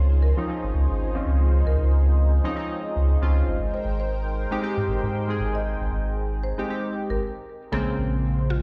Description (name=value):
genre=deep house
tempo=116 BPM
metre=4/4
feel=swing 58% on 16ths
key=unclear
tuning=A4 = 440 Hz
part: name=warm analog pad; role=sustained chords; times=0.0-8.6 s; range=Ab3 to C6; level=-38 LUFS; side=equal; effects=chorus
part: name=warm analog keys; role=stabs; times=0.0-8.5 s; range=Db3 to Ab4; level=-31 LUFS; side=equal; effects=chorus, tape echo
part: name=round analog bass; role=bass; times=0.0-8.6 s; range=Ab1 to Ab2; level=-24 LUFS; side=equal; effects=none
part: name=deep dark ambient pad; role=texture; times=0.9-7.2 s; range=Ab3 to C6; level=-40 LUFS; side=equal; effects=chorus, built-in reverb
part: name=marimba with medium mallets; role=melody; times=0.2-7.2 s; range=Bb4 to Eb5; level=-39 LUFS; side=equal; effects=tape echo
part: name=mallet-like synth pluck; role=melody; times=7.7-8.6 s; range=F4 to Ab4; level=-36 LUFS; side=equal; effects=chorus
room=light reverb, digital ambience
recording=played on a big sound system in a bare room, stone room reverb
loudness=-24 LUFS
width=mono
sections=0.0-7.7 A section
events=stop 7.2-7.7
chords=0.0 Dbmaj9; 3.6 Abmaj7; 7.7 Bbm9